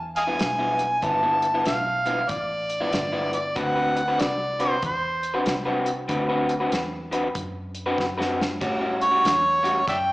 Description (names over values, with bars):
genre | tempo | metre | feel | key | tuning
electric blues shuffle | 95 BPM | 4/4 | swing 63% on 8ths | D mixolydian | A4 = 441 Hz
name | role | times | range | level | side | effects
vintage muted fingered electric bass | bass | 0.0-10.1 s | G1 to A2 | -35 LUFS | equal | none
mellow harmonica | melody | 0.2-10.1 s | C5 to A5 | -22 LUFS | equal | overdrive, slapback echo
warm soul drum kit | drums | 0.2-10.1 s | crash cymbal, hi-hat, kick drum, snare drum | -31 LUFS | equal | slapback echo
electric guitar through a small old amp | riff | 0.3-9.8 s | G2 to B4 | -26 LUFS | left 1 dB | slapback echo
room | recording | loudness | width
moderate lush hall reverb, RT60 2.0 s | live gig heard through the venue's PA, club reverb, small speaker sound | -21 LUFS | side -19 dB against mid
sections
0.0-10.1 A section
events
drum fill 8.0-8.6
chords
0.0 G13; 3.6 D13; 8.6 A13